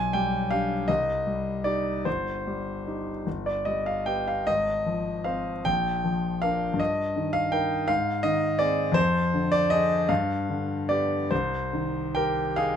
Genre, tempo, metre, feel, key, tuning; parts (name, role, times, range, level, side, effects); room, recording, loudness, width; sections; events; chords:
classical, romantic character piece for solo piano; 48-57 BPM (dotted quarters); 6/8; rubato; C minor; A4 = 440 Hz
clear concert grand piano; solo; 0.0-12.8 s; G1 to Ab5; -24 LUFS; left 1 dB
light reverb; close, detailed microphones; -24 LUFS; side -8 dB against mid
0.0-12.8 A section
0.0 G/B; 0.9 Cm; 2.1 Cm/G; 3.3 G; 4.5 Fm/Ab; 5.7 Bb; 6.8 Eb/G; 7.9 Ab; 9.0 Dm7b5/F; 10.1 G7; 11.3 Cm